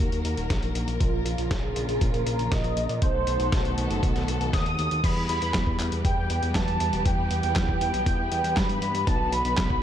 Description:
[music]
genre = italo disco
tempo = 119 BPM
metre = 4/4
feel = straight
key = E minor from 5.0 s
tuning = A4 = 440 Hz
[part]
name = warm studio string section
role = sustained chords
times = 0.0-9.8 s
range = Db3 to B4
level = -32 LUFS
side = left 1 dB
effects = none
[part]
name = fat analog bass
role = bass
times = 0.0-9.8 s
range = Eb1 to Bb2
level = -28 LUFS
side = equal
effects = none
[part]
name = dusty soul sampler-style drum kit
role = drums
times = 0.0-9.7 s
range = crash cymbal, handclaps, hi-hat, snare drum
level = -33 LUFS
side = equal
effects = overdrive, high-pass filter on hats, high-pass filter on snare, high-pass filter on toms, high-pass filter on cymbals, high-pass filter on room
[part]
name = electronic kick drum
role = drums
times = 0.0-9.8 s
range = none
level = -26 LUFS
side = equal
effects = overdrive
[part]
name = wide unison lead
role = melody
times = 1.0-9.8 s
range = F4 to D#6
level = -28 LUFS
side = right 1 dB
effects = lush chorus, ping-pong delay
[sound]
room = light reverb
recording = dark, warm production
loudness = -23 LUFS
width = side -10 dB against mid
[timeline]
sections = 0.0-5.0 A section; 5.0-9.8 B section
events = filter sweep on analog synth lead 0.0-5.0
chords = 0.0 Ebm; 1.0 Bbm; 3.0 B7; 5.0 Em; 9.1 Bm

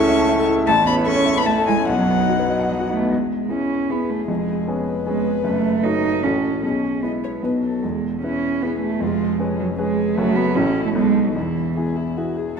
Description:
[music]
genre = quick classical-period movement for piano trio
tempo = 152 BPM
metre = 3/4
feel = rubato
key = E major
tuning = A4 = 441 Hz
[part]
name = dark violin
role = melody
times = 0.0-12.6 s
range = C#4 to C#6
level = -25 LUFS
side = left 7 dB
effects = none
[part]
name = rich cello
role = second line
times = 0.0-12.6 s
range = E3 to F#4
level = -22 LUFS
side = right 6 dB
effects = none
[part]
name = clear grand piano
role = accompaniment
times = 0.0-12.6 s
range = E1 to A5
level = -21 LUFS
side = left 2 dB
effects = none
[sound]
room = moderate scoring stage reverb, RT60 1.9 s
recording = dark, warm production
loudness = -18 LUFS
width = side -6 dB against mid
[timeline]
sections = 0.0-3.1 A section; 3.1-12.6 B section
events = none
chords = 0.0 A/C#; 0.7 A; 1.9 B; 3.1 E; 4.3 C#7/E#; 5.5 F#m; 6.2 F#m/A; 6.6 E/B; 7.4 B; 7.8 E; 9.0 C#7/E#; 10.2 F#m; 10.6 F#m/A; 11.0 B7; 11.4 E

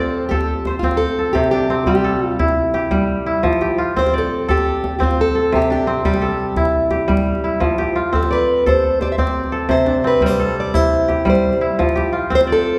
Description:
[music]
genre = west african traditional, West African string and xylophone music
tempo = 115 BPM (dotted quarters)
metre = 12/8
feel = straight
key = F major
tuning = A4 = 439 Hz
[part]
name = fingerpicked plugged-in steel-string acoustic guitar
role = melody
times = 0.0-12.8 s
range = F4 to E5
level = -21 LUFS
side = equal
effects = none
[part]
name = kora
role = arpeggios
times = 0.0-12.8 s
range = C3 to D5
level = -20 LUFS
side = equal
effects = none
[part]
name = djembe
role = percussion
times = 0.2-12.8 s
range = none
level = -25 LUFS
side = equal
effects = none
[sound]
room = wet recital hall reverb, RT60 1.6 s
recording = recorded in a church or concert hall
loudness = -17 LUFS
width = mono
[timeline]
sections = 0.0-12.8 A section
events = none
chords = 0.0 F; 1.3 C; 3.4 F; 5.5 C; 7.6 F; 9.7 C; 11.8 F

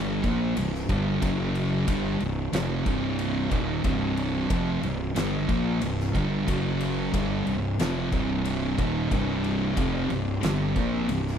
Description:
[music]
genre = stoner and doom metal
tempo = 91 BPM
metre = 4/4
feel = straight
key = C minor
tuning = A4 = 440 Hz
[part]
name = thick fuzz guitar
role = riff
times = 0.0-11.4 s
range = C2 to Bb3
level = -29 LUFS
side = left 9 dB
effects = distortion
[part]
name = thick fuzz guitar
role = riff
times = 0.0-11.4 s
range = C2 to Bb3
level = -28 LUFS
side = right 10 dB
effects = distortion
[part]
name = fuzz fingered electric bass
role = bass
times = 0.0-11.4 s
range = C1 to Bb1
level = -31 LUFS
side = equal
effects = overdrive
[part]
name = oversized low-tuned drum kit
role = drums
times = 0.2-11.4 s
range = kick drum, ride cymbal, snare drum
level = -31 LUFS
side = equal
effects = none
[part]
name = phased string machine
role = sustained chords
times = 9.1-11.4 s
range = C4 to D5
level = -37 LUFS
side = left 1 dB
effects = ensemble chorus, phaser
[sound]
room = little or no reverb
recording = none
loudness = -24 LUFS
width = side -8 dB against mid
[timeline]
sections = 0.0-11.4 A section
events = none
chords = 0.0 C5; 1.2 F#5; 1.9 Cm; 6.5 F#5; 7.1 Cm

